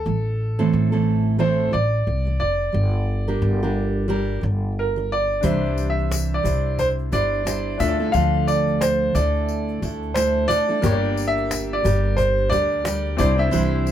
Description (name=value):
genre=acoustic pop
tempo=89 BPM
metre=4/4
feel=swing 60% on 16ths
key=unclear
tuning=A4 = 440 Hz
part: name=clear upright piano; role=melody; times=0.0-13.9 s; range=A4 to F5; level=-23 LUFS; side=right 1 dB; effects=none
part: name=fingerpicked steel-string acoustic guitar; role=accompaniment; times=0.1-13.9 s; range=A2 to C5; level=-24 LUFS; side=right 3 dB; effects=none
part: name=upright bass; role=bass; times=0.1-13.9 s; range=F1 to D2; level=-23 LUFS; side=left 1 dB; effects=none
part: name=bright upright piano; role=accompaniment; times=5.4-13.9 s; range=Bb3 to E5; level=-30 LUFS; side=left 6 dB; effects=none
part: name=cajon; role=drums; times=5.4-13.8 s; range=none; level=-30 LUFS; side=left 1 dB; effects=none
part: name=tambourine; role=percussion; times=5.4-13.9 s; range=none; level=-36 LUFS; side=left 8 dB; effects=none
room=moderate studio ambience, RT60 0.5 s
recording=band playing live in one room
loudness=-19 LUFS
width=side -10 dB against mid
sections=0.0-5.4 A section; 5.4-13.9 B section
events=none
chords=0.0 Am; 2.7 Gm; 5.4 Cadd9; 7.8 Dmadd9; 10.8 Gm; 13.2 Cadd9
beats=| 0.05 0.72 1.40 2.07 | 2.74 3.42 4.09 4.77 | 5.44 6.11 6.79 7.46 | 8.14 8.81 9.48 10.16 | 10.83 11.51 12.18 12.86 | 13.53